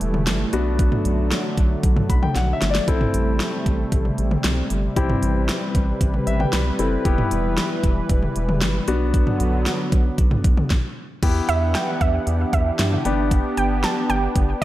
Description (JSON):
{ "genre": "synth-pop", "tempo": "115 BPM", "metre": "4/4", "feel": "straight", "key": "E minor", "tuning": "A4 = 440 Hz", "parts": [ { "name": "warm grand piano", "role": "accompaniment", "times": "0.0-14.6 s", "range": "B3 to B5", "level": "-27 LUFS", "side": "left 4 dB", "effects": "none" }, { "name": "warm analog pad", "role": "sustained chords", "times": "0.0-14.6 s", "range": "C3 to F#5", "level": "-26 LUFS", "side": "right 1 dB", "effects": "chorus" }, { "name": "round analog bass", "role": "bass", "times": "0.0-14.6 s", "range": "E1 to G2", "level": "-23 LUFS", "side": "equal", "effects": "none" }, { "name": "pop drum kit", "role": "drums", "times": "0.0-14.6 s", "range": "crash cymbal, hi-hat, kick drum, snare drum, toms", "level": "-22 LUFS", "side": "equal", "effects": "gated reverb" }, { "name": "warbly dusty pluck", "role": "second line", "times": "11.5-14.6 s", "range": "E5 to A5", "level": "-25 LUFS", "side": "right 4 dB", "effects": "chorus, tape echo" } ], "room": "light reverb", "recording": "none", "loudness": "-18 LUFS", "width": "side -15 dB against mid", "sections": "0.0-11.2 A section; 11.2-14.6 B section", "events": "grand piano fill 1.8-2.9, 6.0-7.1; drum fill 2.4-2.9; stop 10.7-11.2", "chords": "0.0 Em; 0.5 Bm; 2.9 Am7; 7.1 Em; 8.9 Bm; 11.2 Em7; 13.1 G" }